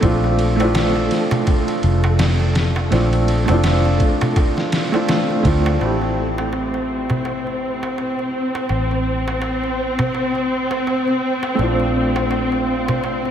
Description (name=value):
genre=trip hop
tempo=83 BPM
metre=4/4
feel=swing 58% on 16ths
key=A phrygian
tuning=A4 = 436 Hz
part: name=felt-muted upright piano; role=accompaniment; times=0.0-13.3 s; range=A3 to G4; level=-21 LUFS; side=right 1 dB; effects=tremolo, tape echo
part: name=vintage muted fingered electric bass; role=bass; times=0.0-13.3 s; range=F1 to D2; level=-20 LUFS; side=equal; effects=none
part: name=trip hop sampler-style drum kit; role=drums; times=0.0-5.6 s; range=kick drum, ride cymbal, snare drum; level=-22 LUFS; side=equal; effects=studio ambience
part: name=darbuka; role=percussion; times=0.0-13.3 s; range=none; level=-28 LUFS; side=right 2 dB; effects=none
part: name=flickering grainy texture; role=texture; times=0.0-13.3 s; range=A4 to C5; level=-29 LUFS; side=equal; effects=built-in reverb
part: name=warm studio string section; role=sustained chords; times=5.8-13.3 s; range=C4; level=-21 LUFS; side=equal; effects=none
room=wet cathedral reverb, RT60 5.2 s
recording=dreamy mix soaked in reverb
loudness=-16 LUFS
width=side -9 dB against mid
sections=0.0-5.8 A section; 5.8-13.3 B section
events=none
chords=0.0 Bbmaj7; 5.8 Am7; 11.6 Bbmaj7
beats=| 0.03 0.75 1.47 2.19 | 2.92 3.64 4.36 5.09 | 5.81 6.53 7.25 7.98 | 8.70 9.42 10.15 10.87 | 11.59 12.31 13.04